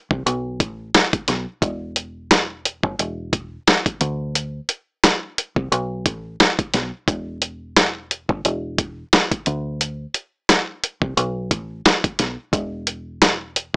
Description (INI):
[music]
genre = hip hop, boom-bap hip-hop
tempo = 88 BPM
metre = 4/4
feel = swing 56% on 16ths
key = unclear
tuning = A4 = 440 Hz
[part]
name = deep dub fingered electric bass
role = bass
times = 0.1-13.7 s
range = E1 to D2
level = -26 LUFS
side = equal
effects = none
[part]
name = dusty soul sampler-style drum kit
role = drums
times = 0.1-13.7 s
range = hi-hat, kick drum, snare drum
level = -16 LUFS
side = equal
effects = none
[sound]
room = moderate studio reverb, RT60 0.6 s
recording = small speaker sound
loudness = -19 LUFS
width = side -29 dB against mid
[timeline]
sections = 0.0-1.6 A section; 1.6-13.8 B section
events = none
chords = none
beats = 0.26 0.94 | 1.62 2.30 2.98 3.67 | 4.35 5.03 5.71 6.39 | 7.08 7.76 8.44 9.12 | 9.80 10.48 11.17 11.85 | 12.53 13.21